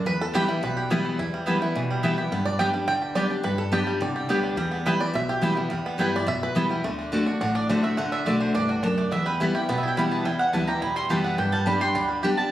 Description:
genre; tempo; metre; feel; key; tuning
bluegrass; 212 BPM; 4/4; straight; E minor; A4 = 441 Hz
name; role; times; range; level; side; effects
bluegrass banjo; melody; 0.0-12.5 s; E3 to G5; -28 LUFS; right 2 dB; plate reverb
picked steel-string acoustic guitar; accompaniment; 0.0-12.5 s; E2 to G4; -25 LUFS; left 1 dB; none
upright bass; bass; 0.1-12.3 s; A1 to G2; -35 LUFS; right 1 dB; none
mandolin; stabs; 0.3-12.5 s; B3 to C6; -28 LUFS; right 2 dB; slapback echo
room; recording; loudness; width
moderate studio reverb, RT60 0.5 s; recorded on a phone in the room, studio reverb, compression; -22 LUFS; side -13 dB against mid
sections
0.0-6.8 A section; 6.8-12.5 A section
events
five-string banjo solo 0.0-6.8; mandolin solo 6.8-12.5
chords
0.1 Em; 2.3 G; 4.6 Em; 6.8 D; 9.1 Em; 11.4 G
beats
| 0.06 0.34 0.62 0.91 | 1.19 1.47 1.75 2.03 | 2.32 2.60 2.88 3.16 | 3.45 3.73 4.01 4.29 | 4.58 4.86 5.14 5.43 | 5.71 5.99 6.28 6.56 | 6.84 7.13 7.41 7.70 | 7.98 8.27 8.55 8.83 | 9.12 9.40 9.69 9.97 | 10.25 10.54 10.82 11.10 | 11.39 11.67 11.95 12.23

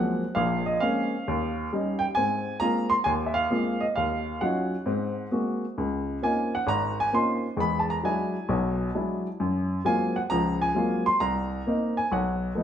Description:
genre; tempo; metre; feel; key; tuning
solo jazz; 133 BPM; 4/4; swing 67% on 8ths; unclear; A4 = 440 Hz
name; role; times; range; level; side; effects
warm upright piano; solo; 0.0-12.6 s; Ab1 to C6; -24 LUFS; equal; none
room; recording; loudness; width
wet stone room reverb, RT60 1.4 s; band playing live in one room; -24 LUFS; side -9 dB against mid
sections
0.0-12.6 A section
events
none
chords
0.4 Bbm9; 1.3 Eb7; 2.2 Ab69; 4.0 Ebm9; 4.9 Ab9; 5.8 Dbmaj13; 7.6 E9; 9.4 Gbmaj9#11; 11.2 Cm7; 12.1 B7(no3)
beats
| 0.35 0.81 1.26 1.71 | 2.16 2.61 3.06 3.52 | 3.97 4.42 4.87 5.32 | 5.78 6.23 6.68 7.13 | 7.58 8.04 8.49 8.94 | 9.39 9.84 10.29 10.74 | 11.20 11.65 12.10 12.55

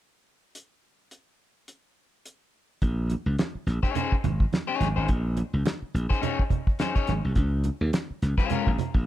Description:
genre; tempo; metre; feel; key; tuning
funk; 106 BPM; 4/4; swing 56% on 16ths; Bb minor; A4 = 439 Hz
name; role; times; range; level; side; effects
cloth-damped thuddy drum kit; drums; 0.6-9.1 s; hi-hat, kick drum, snare drum; -25 LUFS; equal; none
slap bass; bass; 2.8-9.0 s; Ab1 to Eb2; -26 LUFS; equal; none
congas; percussion; 2.8-8.9 s; none; -33 LUFS; right 9 dB; none
electric guitar at the edge of break-up; accompaniment; 3.8-8.7 s; Ab3 to Db5; -29 LUFS; left 6 dB; spring reverb
room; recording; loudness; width
light reverb; dark, warm production; -24 LUFS; side -13 dB against mid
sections
0.5-2.8 A section; 2.8-9.1 B section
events
none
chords
0.5 N.C.; 2.8 Bbm11; 7.4 Db6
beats
| 0.55 1.11 1.68 2.25 | 2.82 3.39 3.96 4.52 | 5.09 5.66 6.23 6.80 | 7.37 7.93 8.50

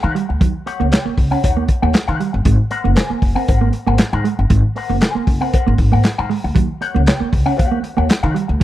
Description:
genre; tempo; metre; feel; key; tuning
funk; 117 BPM; 4/4; straight; unclear; A4 = 440 Hz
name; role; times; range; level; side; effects
electric guitar with an envelope filter; accompaniment; 0.0-8.5 s; G4 to Ab5; -23 LUFS; left 6 dB; wah, spring reverb
upright bass; bass; 0.0-8.6 s; Gb1 to Eb3; -17 LUFS; equal; none
mellow electric guitar; riff; 0.2-8.6 s; F#3 to Db4; -22 LUFS; right 8 dB; none
crunchy breakbeat drum kit; drums; 0.2-8.6 s; handclaps, hi-hat, kick drum, snare drum; -16 LUFS; equal; none
room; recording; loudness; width
small room ambience; dry, close 1970s-style studio recording; -14 LUFS; side -14 dB against mid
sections
0.0-8.6 A section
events
none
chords
0.0 Eb7#9; 2.5 Ab9; 6.6 Eb7#9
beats
| 0.41 0.92 1.43 1.94 | 2.46 2.97 3.48 3.99 | 4.50 5.02 5.53 6.04 | 6.55 7.07 7.58 8.10 | 8.61

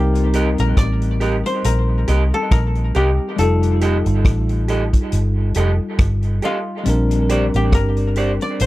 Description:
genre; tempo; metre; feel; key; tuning
lovers rock reggae; 69 BPM; 4/4; swing 57% on 16ths; C dorian; A4 = 440 Hz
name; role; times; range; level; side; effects
koto; melody; 0.0-8.7 s; F4 to D5; -24 LUFS; left 3 dB; tape echo
bell-like tine electric piano; accompaniment; 0.0-8.7 s; G3 to Bb4; -23 LUFS; left 1 dB; medium stereo tremolo, tape echo
vintage muted fingered electric bass; bass; 0.0-8.7 s; F1 to C2; -18 LUFS; equal; none
vintage drum kit; drums; 0.2-8.7 s; hi-hat, kick drum, rim click; -18 LUFS; equal; none
electric guitar through a small old amp; stabs; 0.3-8.3 s; G4 to Eb5; -25 LUFS; right 3 dB; tape echo
room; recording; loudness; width
little or no reverb; dry, close 1970s-style studio recording; -15 LUFS; side -17 dB against mid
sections
0.0-8.7 A section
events
none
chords
0.0 Cm7; 3.4 F9; 6.9 Bb69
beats
0.77 1.64 2.51 | 3.38 4.25 5.12 5.99 | 6.86 7.73 8.60

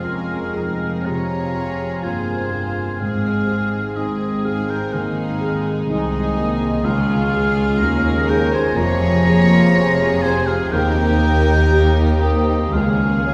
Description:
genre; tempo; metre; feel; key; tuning
cinematic, emotional film score for orchestra; 62 BPM; 4/4; rubato; F minor; A4 = 440 Hz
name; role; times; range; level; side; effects
rich studio violin section; melody; 0.0-13.3 s; Eb4 to Bb4; -33 LUFS; equal; none
clear studio violin section; second line; 0.0-13.3 s; G4 to Db5; -30 LUFS; equal; none
warm oboe; second line; 0.0-13.3 s; Eb5 to Bb5; -27 LUFS; equal; none
warm grand piano; accompaniment; 0.0-13.3 s; Db2 to Db5; -26 LUFS; equal; none
warm studio viola section; accompaniment; 0.0-13.3 s; C3 to F4; -29 LUFS; equal; none
warm French horn section; sustained chords; 0.0-13.3 s; C3 to Ab4; -29 LUFS; equal; none
concert harp; arpeggios; 0.0-13.3 s; F2 to C6; -28 LUFS; equal; none
dark studio cello section; bass; 0.0-13.3 s; C2 to Ab2; -26 LUFS; equal; none
dark symphonic double bass section; bass; 0.0-13.3 s; F1 to Eb2; -26 LUFS; equal; none
room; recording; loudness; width
wet scoring stage reverb, RT60 1.7 s; heard from further back in the room; -18 LUFS; mono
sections
0.0-13.3 A section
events
none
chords
0.0 Fm; 3.0 Ab; 6.8 Db; 8.8 Fm; 10.7 Eb; 12.7 Db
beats
0.05 1.07 2.06 | 3.02 3.97 4.93 5.90 | 6.85 7.81 8.78 9.74 | 10.72 11.71 12.74

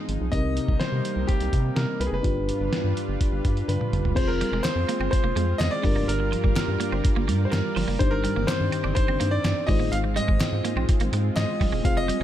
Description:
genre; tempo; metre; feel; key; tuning
1980s-style pop; 125 BPM; 4/4; straight; C minor; A4 = 440 Hz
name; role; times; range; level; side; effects
bright grand piano; melody; 0.0-12.2 s; G4 to F5; -29 LUFS; equal; none
mellow FM electric piano; accompaniment; 0.0-12.2 s; G2 to C5; -30 LUFS; left 4 dB; chorus
lush unison pad; sustained chords; 0.0-12.2 s; C3 to D5; -32 LUFS; right 1 dB; chorus
rubbery square bass; bass; 0.1-12.2 s; E1 to C3; -27 LUFS; equal; none
lo-fi sampler-style drum kit; drums; 0.1-12.2 s; crash cymbal, hi-hat, kick drum, snare drum, tambourine, toms; -25 LUFS; equal; gated reverb
clean electric guitar; riff; 4.3-12.2 s; F3 to D4; -32 LUFS; right 7 dB; analog chorus
group handclap; percussion; 4.6-11.5 s; none; -43 LUFS; left 4 dB; none
room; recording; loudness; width
light reverb; none; -22 LUFS; side -11 dB against mid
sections
0.0-4.2 A section; 4.2-12.2 B section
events
drum fill 3.7-4.2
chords
0.3 Cm7; 2.2 G7; 4.2 Fm; 5.8 Gm7; 8.0 Cmadd9/G; 9.7 Ab6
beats
| 0.33 0.81 1.29 1.77 | 2.25 2.73 3.21 3.69 | 4.17 4.65 5.13 5.61 | 6.09 6.57 7.05 7.53 | 8.01 8.49 8.97 9.45 | 9.93 10.41 10.89 11.37 | 11.85

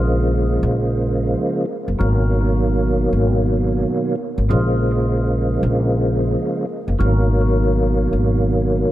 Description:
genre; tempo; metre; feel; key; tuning
hip hop, boom-bap hip-hop; free time; none; none; G# dorian; A4 = 441 Hz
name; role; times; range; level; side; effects
percussive tonewheel organ; accompaniment; 0.0-8.9 s; B2 to A#3; -19 LUFS; right 1 dB; overdrive, chorus vibrato, slow rotary speaker, cassette tape, high-pass filter, low-pass filter, analog delay
upright bass; bass; 0.0-8.8 s; F#1 to A#1; -18 LUFS; equal; none
room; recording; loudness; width
light reverb, small room ambience; echo-heavy mix; -16 LUFS; side -14 dB against mid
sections
0.0-8.9 A section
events
none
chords
0.0 A#m7; 2.0 G#m9; 4.5 A#m7; 7.0 G#m9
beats
free time

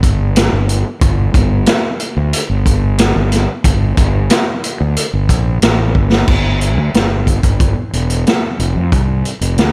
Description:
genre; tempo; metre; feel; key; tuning
classic rock; 91 BPM; 4/4; straight; G dorian; A4 = 440 Hz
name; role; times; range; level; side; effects
fuzz fingered electric bass; bass; 0.0-9.7 s; E1 to F2; -17 LUFS; equal; overdrive
vintage drum kit; drums; 0.0-9.7 s; crash cymbal, hi-hat, kick drum, snare drum; -16 LUFS; equal; none
room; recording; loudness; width
light reverb; none; -14 LUFS; mono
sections
0.0-6.3 A section; 6.3-9.7 B section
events
drum fill 6.0-6.3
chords
none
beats
0.36 | 1.02 1.68 2.33 2.99 | 3.65 4.31 4.96 5.62 | 6.28 6.94 7.60 8.26 | 8.92 9.58

